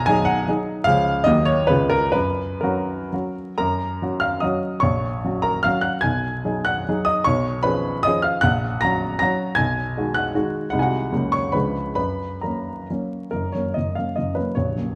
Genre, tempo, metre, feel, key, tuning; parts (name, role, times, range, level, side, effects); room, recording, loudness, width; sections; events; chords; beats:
classical, romantic triple-time dance for piano with dotted rhythms; 115-164 BPM; 3/4; rubato; F# major; A4 = 439 Hz
dark baby grand piano; solo; 0.0-15.0 s; A#0 to A#6; -22 LUFS; equal
moderate scoring stage reverb, RT60 1.6 s; vinyl crackle; -22 LUFS; mono
0.0-3.6 A section; 3.6-13.3 A section; 13.3-15.0 B section
0.0 G#m7/B; 0.9 C#; 1.3 D#m; 1.7 C#7; 2.1 F#; 4.8 F#/A#; 6.0 G#m7/B; 7.3 C#7/B; 8.4 F#/A#; 9.6 G#m7/B; 10.7 G#7/B#; 11.1 F#/C#; 11.5 C#7b9; 12.0 F#
0.08 0.48 | 0.86 1.26 1.70 | 2.15 2.64 3.13 | 3.58 4.00 4.42 | 4.82 5.23 5.64 | 6.03 6.45 6.87 | 7.25 7.64 8.05 | 8.43 8.82 9.20 | 9.57 9.96 10.35 | 10.72 11.12 11.54 | 11.97 12.43 12.89 | 13.33 13.75 14.17 | 14.56